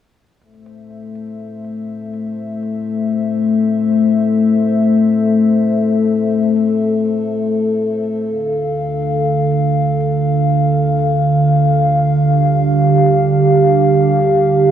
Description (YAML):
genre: melodic techno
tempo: 122 BPM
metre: 4/4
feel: straight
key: A minor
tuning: A4 = 440 Hz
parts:
  - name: dark analog pad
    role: sustained chords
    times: 0.4-14.7 s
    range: D3 to F5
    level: -13 LUFS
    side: equal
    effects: chorus
  - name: electronic hi-hat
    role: drums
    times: 0.4-14.7 s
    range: none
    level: -58 LUFS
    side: right 2 dB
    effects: none
room: moderate digital room reverb, RT60 1.3 s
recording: none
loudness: -13 LUFS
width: side -9 dB against mid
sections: 0.4-14.7 A section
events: filter sweep on analog synth pad 0.4-14.7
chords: 0.4 Am; 8.3 Dm